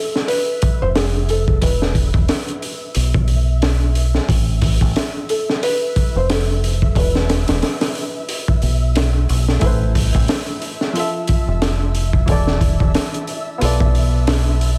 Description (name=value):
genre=trip hop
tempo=90 BPM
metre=4/4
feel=swing 58% on 16ths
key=A minor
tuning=A4 = 436 Hz
part: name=felt-muted upright piano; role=melody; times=0.0-9.3 s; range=G#4 to C5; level=-25 LUFS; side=equal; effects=tape echo
part: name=flickering grainy texture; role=texture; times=0.0-14.8 s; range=E5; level=-35 LUFS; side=equal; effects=built-in reverb
part: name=crunchy breakbeat drum kit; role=drums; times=0.2-14.8 s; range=hi-hat, kick drum, snare drum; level=-21 LUFS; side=equal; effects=none
part: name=deep dub fingered electric bass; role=bass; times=0.8-14.8 s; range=E1 to B1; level=-20 LUFS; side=equal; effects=none
part: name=warm upright piano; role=accompaniment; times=9.6-14.8 s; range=E3 to E5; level=-27 LUFS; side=equal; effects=harmonic tremolo, tape echo
room=small room reverb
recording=none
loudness=-18 LUFS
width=mono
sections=0.0-14.8 A section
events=none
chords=0.3 Fmaj7#11; 1.6 E5; 3.0 Bsus4; 4.3 A5; 5.6 Fmaj7; 7.0 E5; 8.3 Bsus4; 9.6 Amadd9; 11.0 Fmaj7; 12.3 E7sus4; 13.6 Bm7b5